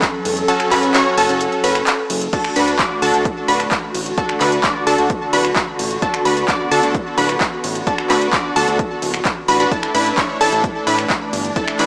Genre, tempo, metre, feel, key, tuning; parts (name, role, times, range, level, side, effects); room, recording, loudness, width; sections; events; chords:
EDM, festival progressive house; 130 BPM; 4/4; straight; D major; A4 = 436 Hz
muted chamber string section; sustained chords; 0.0-11.9 s; D3 to A4; -23 LUFS; equal; sidechain pumping
big-room dance drum kit; drums; 0.0-11.9 s; crash cymbal, finger snaps, handclaps, hi-hat, ride cymbal; -21 LUFS; equal
electronic kick drum; drums; 0.0-11.7 s; -23 LUFS; equal
fat analog bass; bass; 0.3-11.9 s; D1 to A2; -25 LUFS; equal; sidechain pumping
wide unison pluck; arpeggios; 0.5-11.9 s; A5 to D6; -20 LUFS; equal; sidechain pumping, digital delay
supersaw stab; riff; 0.5-11.9 s; C#4 to D5; -19 LUFS; equal; sidechain pumping, digital delay
moderate digital room reverb, RT60 1.0 s; small speaker sound; -14 LUFS; side -31 dB against mid
0.0-11.9 A section
kick drops out 0.5-2.3
0.0 F#m; 2.3 D; 9.7 Asus4